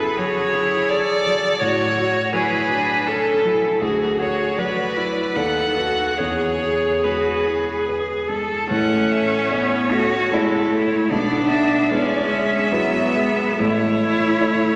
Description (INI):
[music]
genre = classical, slow romantic movement for piano quartet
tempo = 66-85 BPM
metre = 3/4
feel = rubato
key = A major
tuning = A4 = 440 Hz
[part]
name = clear violin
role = melody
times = 0.0-14.8 s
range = G#4 to F#5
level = -26 LUFS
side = equal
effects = none
[part]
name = clear cello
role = second line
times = 0.0-14.8 s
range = B3 to A4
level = -25 LUFS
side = equal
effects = none
[part]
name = dark baby grand piano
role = accompaniment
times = 0.0-14.8 s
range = A1 to C#5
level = -28 LUFS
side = equal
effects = none
[part]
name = rich viola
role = accompaniment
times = 0.0-14.8 s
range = F#3 to B4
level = -24 LUFS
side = equal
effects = none
[sound]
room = wet church reverb, RT60 3.3 s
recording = none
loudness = -20 LUFS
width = mono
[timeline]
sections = 0.0-8.7 A section; 8.7-14.8 B section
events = none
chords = 0.0 F#m7; 1.6 F#m/A; 3.8 Bm/D; 5.4 B7/D#; 6.2 E; 8.7 A; 11.1 E7/B; 13.6 A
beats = 0.18 0.90 | 1.61 2.33 3.08 | 3.82 4.58 5.36 | 6.19 7.05 7.88 | 8.70 9.51 10.31 | 11.11 11.90 12.71 | 13.59 14.40